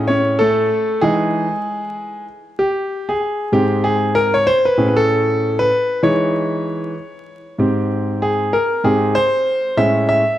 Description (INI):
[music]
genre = hip hop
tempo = 96 BPM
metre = 4/4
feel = swing 59% on 16ths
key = Ab major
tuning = A4 = 440 Hz
[part]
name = clear concert grand piano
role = solo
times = 0.0-10.4 s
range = Ab2 to E5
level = -15 LUFS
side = equal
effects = slapback echo
[sound]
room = light reverb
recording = dark, warm production, vinyl crackle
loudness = -15 LUFS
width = side -13 dB against mid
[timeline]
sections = 0.0-2.6 A section; 2.6-10.4 B section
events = grand piano solo 0.0-2.6, 2.6-10.4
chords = 0.0 Amaj7; 1.0 Emaj7; 2.6 Ab; 4.8 Amaj7; 6.0 Emaj7; 7.6 Abmaj7; 9.8 Amaj7